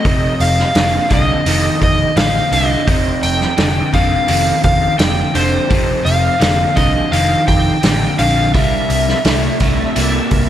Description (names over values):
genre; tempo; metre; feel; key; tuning
blues rock power trio and southern rock; 85 BPM; 4/4; straight; unclear; A4 = 440 Hz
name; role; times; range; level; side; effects
overdriven slide guitar; melody; 0.0-10.5 s; C5 to G5; -17 LUFS; equal; slapback echo
overdriven tonewheel organ; sustained chords; 0.0-10.5 s; D4 to Bb5; -26 LUFS; right 3 dB; slow rotary speaker, chorus vibrato
crunchy overdriven guitar; riff; 0.0-10.5 s; F2 to Bb3; -18 LUFS; left 1 dB; slapback echo
vintage muted picked electric bass; bass; 0.1-10.5 s; F1 to C2; -19 LUFS; equal; none
vintage drum kit; drums; 0.1-10.5 s; hi-hat, kick drum, snare drum; -18 LUFS; equal; none
room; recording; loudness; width
moderate concert hall reverb, RT60 2.3 s; big arena sound; -12 LUFS; side -11 dB against mid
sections
0.0-10.5 A section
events
none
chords
0.0 F7; 8.5 C7